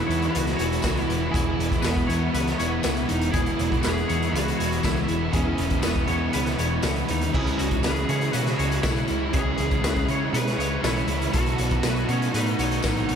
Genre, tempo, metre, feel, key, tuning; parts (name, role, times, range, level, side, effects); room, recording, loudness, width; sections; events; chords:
rock, shoegaze and dream pop; 120 BPM; 4/4; straight; E major; A4 = 440 Hz
fuzz lead guitar; melody; 0.0-13.2 s; B3 to B4; -29 LUFS; equal; distortion, ping-pong delay
twangy electric guitar; arpeggios; 0.0-13.1 s; G#4 to C#5; -32 LUFS; left 2 dB; ensemble chorus, ping-pong delay
crunchy overdriven guitar; riff; 0.0-13.2 s; E2 to F#4; -28 LUFS; right 8 dB; reverse reverb
thick fuzz guitar; riff; 0.0-13.2 s; E2 to C#4; -30 LUFS; left 8 dB; distortion, lush chorus
picked electric bass; bass; 0.0-13.2 s; E1 to C#3; -28 LUFS; equal
raw garage drum kit; drums; 0.1-13.2 s; crash cymbal, hi-hat, kick drum, snare drum; -28 LUFS; equal
tambourine; percussion; 0.8-12.9 s; -41 LUFS; left 14 dB
wet huge ambient reverb, RT60 7.8 s; dreamy mix soaked in reverb; -21 LUFS; side -7 dB against mid
0.0-13.2 A section
0.0 E; 7.3 C#m7; 11.3 B7